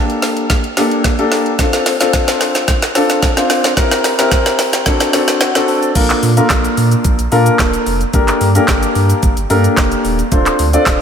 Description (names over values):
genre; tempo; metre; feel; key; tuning
dance-pop; 110 BPM; 4/4; straight; G minor; A4 = 441 Hz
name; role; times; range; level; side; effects
dark concert grand piano; accompaniment; 0.0-11.0 s; Bb3 to A5; -14 LUFS; left 1 dB; lush chorus, sidechain pumping, low-pass filter
smooth R&B drum kit; drums; 0.1-11.0 s; crash cymbal, handclaps, hi-hat, kick drum, shaker, snare drum; -15 LUFS; right 1 dB; none
warm sub bass; bass; 6.0-11.0 s; D1 to Bb2; -16 LUFS; right 1 dB; sidechain pumping
room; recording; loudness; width
moderate church reverb, RT60 3.0 s; dreamy mix soaked in reverb; -11 LUFS; side -7 dB against mid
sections
0.0-6.0 A section; 6.0-11.0 B section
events
build-up 0.0-6.0; drum fill 0.0-6.0; grand piano fill 5.1-6.0; drop 6.0-11.0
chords
0.0 Gmadd9; 1.6 Dm7; 3.8 C7; 4.9 D7; 6.0 Bbmaj7; 8.1 Gmadd9; 10.3 Dm7